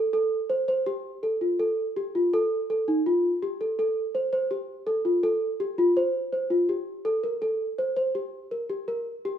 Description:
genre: contemporary instrumental, contemporary.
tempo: 165 BPM.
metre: 5/4.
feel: straight.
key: unclear.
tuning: A4 = 440 Hz.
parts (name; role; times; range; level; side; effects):
small celesta; solo; 0.0-9.4 s; Eb4 to C5; -24 LUFS; equal; none.
room: moderate recital hall reverb, RT60 1.3 s.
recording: minimal, uncompressed stereo recording.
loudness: -24 LUFS.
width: side -9 dB against mid.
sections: 0.0-9.4 A section.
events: none.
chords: none.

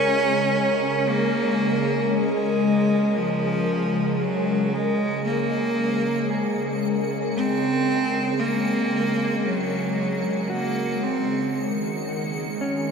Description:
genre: ambient.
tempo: 57 BPM.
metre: 3/4.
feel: straight.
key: unclear.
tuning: A4 = 441 Hz.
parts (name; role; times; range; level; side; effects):
bright cello; melody; 0.0-11.6 s; F3 to Db4; -24 LUFS; right 1 dB; shimmer reverb, ping-pong delay.
airy breathy pad; sustained chords; 0.0-12.9 s; Db3 to Bb4; -24 LUFS; left 1 dB; chorus, phaser, shimmer reverb.
organ-like drone; drone; 6.2-12.9 s; Ab3 to Ab4; -38 LUFS; left 1 dB; none.
backwards swelling texture; texture; 2.2-12.9 s; Db7; -41 LUFS; right 1 dB; built-in reverb, analog chorus, shimmer reverb.
mellow electric guitar; arpeggios; 0.1-12.9 s; Db4 to Ab4; -35 LUFS; right 1 dB; spring reverb, shimmer reverb, ping-pong delay.
room: wet huge ambient reverb, RT60 7.6 s.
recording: dreamy mix soaked in reverb.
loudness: -21 LUFS.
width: side -6 dB against mid.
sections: 0.0-12.9 A section.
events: fade-in on clean electric guitar 0.0-12.9; fade-in on synth texture 0.0-12.9; filter sweep on analog synth pad 0.0-12.9.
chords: 0.0 Absus4; 5.3 Gb; 11.6 Ab7sus4.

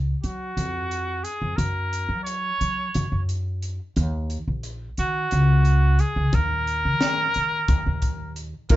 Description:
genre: progressive instrumental, band music in an uneven meter.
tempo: 177 BPM (eighths).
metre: 7/8.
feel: straight.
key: Eb minor.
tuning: A4 = 440 Hz.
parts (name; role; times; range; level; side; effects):
upright bass; bass; 0.0-8.8 s; Bb1 to Gb3; -23 LUFS; equal; none.
clear trumpet; melody; 0.2-8.8 s; Gb4 to Db5; -25 LUFS; right 1 dB; none.
crisp fusion drum kit; drums; 0.2-8.8 s; crash cymbal, hi-hat, kick drum, snare drum; -27 LUFS; left 1 dB; none.
bright baby grand piano; accompaniment; 8.7-8.8 s; Bb3 to F4; -23 LUFS; right 5 dB; none.
room: light reverb.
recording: band playing live in one room, nothing above 7.7 kHz.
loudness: -21 LUFS.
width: side -15 dB against mid.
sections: 0.0-8.7 A section.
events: none.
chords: 0.0 Gbmaj7(no3); 4.0 Ebm7; 6.3 Eb5.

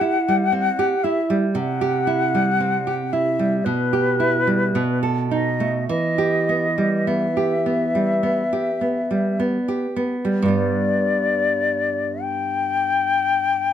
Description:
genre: romantic duo for flute and classical guitar.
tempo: 50-59 BPM.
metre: 4/4.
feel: rubato.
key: E minor, G major from 10.5 s.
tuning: A4 = 440 Hz.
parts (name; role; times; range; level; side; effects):
mellow silver concert flute; melody; 0.0-13.7 s; B4 to G5; -21 LUFS; left 4 dB; none.
nylon-string guitar; accompaniment; 0.0-13.7 s; G2 to A4; -21 LUFS; right 3 dB; none.
room: light reverb.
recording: none.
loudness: -18 LUFS.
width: side -9 dB against mid.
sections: 0.0-10.5 A section; 10.5-13.7 B section.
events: none.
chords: 0.0 C; 3.6 Em/B; 4.8 B7; 5.9 Em; 10.5 G.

